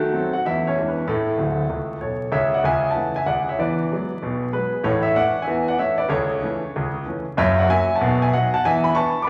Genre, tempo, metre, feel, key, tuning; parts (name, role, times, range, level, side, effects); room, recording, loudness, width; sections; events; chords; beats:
jazz, stride piano; 191 BPM; 4/4; swing 64% on 8ths; A major; A4 = 438 Hz
warm grand piano; solo; 0.0-9.3 s; D1 to D6; -21 LUFS; equal
wet large studio reverb, RT60 1.5 s; vinyl crackle; -21 LUFS; mono
0.0-2.3 A section; 2.3-9.3 B section
grand piano fill 1.4-2.3
0.5 A/E; 0.8 E7; 1.1 A; 2.3 A/C#; 3.6 E9; 4.9 A; 6.1 A/C#; 7.4 F#7; 8.0 B; 8.6 E7
0.14 0.46 0.77 | 1.09 1.40 1.72 2.03 | 2.35 2.66 2.98 3.29 | 3.60 3.92 4.24 4.55 | 4.86 5.18 5.49 5.81 | 6.12 6.44 6.75 7.07 | 7.38 7.70 8.01 8.32 | 8.64 8.95 9.27